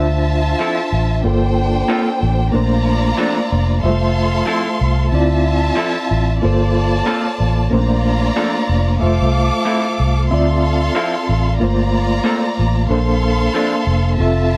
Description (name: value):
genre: soul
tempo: 93 BPM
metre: 4/4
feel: swing 58% on 16ths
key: unclear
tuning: A4 = 438 Hz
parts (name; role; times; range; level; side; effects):
- warm symphonic violin section; second line; 0.0-14.6 s; D4 to D6; -24 LUFS; equal; none
- reed electric piano; accompaniment; 0.0-14.6 s; G3 to E5; -22 LUFS; equal; fast tremolo
- vintage muted fingered electric bass; bass; 0.0-14.6 s; F1 to D2; -19 LUFS; equal; none
- electric guitar through a small old amp; riff; 0.6-13.7 s; F3 to A4; -25 LUFS; equal; none
room: light reverb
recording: none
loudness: -17 LUFS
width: mono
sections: 0.0-14.6 A section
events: none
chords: 0.0 Dm9; 1.2 Gm11; 2.5 Bbmaj9; 3.8 Fmaj7; 5.1 Dm9; 6.4 Gm11; 7.7 Bbmaj9; 9.0 Fmaj7; 10.3 Dm9; 11.6 Gm11; 12.9 Bbmaj9